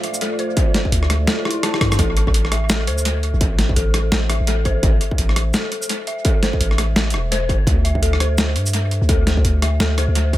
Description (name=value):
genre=half-time drum and bass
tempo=169 BPM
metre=4/4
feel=swing 60% on 16ths, half-time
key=A minor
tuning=A4 = 441 Hz
part: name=dark analog pad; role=sustained chords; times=0.0-2.0 s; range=A3 to D5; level=-28 LUFS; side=right 2 dB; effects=chorus, sidechain pumping
part: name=dark detuned synth bell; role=arpeggios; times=0.0-10.4 s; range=E4 to A5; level=-26 LUFS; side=left 2 dB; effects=chorus, tape echo
part: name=boom bap sampler-style drum kit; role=drums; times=0.0-10.4 s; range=hi-hat, rim click, shaker, snare drum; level=-22 LUFS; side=equal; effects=overdrive, dub echo
part: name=electronic kick drum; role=drums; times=0.6-10.4 s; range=none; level=-19 LUFS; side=equal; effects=distortion
part: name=long sustained 808-style bass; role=bass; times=0.9-10.4 s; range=E1 to G2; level=-18 LUFS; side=equal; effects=none
room=digital ambience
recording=echo-heavy mix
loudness=-16 LUFS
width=side -15 dB against mid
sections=0.0-2.0 A section; 2.0-10.4 A section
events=drop 0.0-2.0, 2.0-10.4; drum fill 1.6-2.0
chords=0.0 Dm; 2.0 Am; 7.7 D5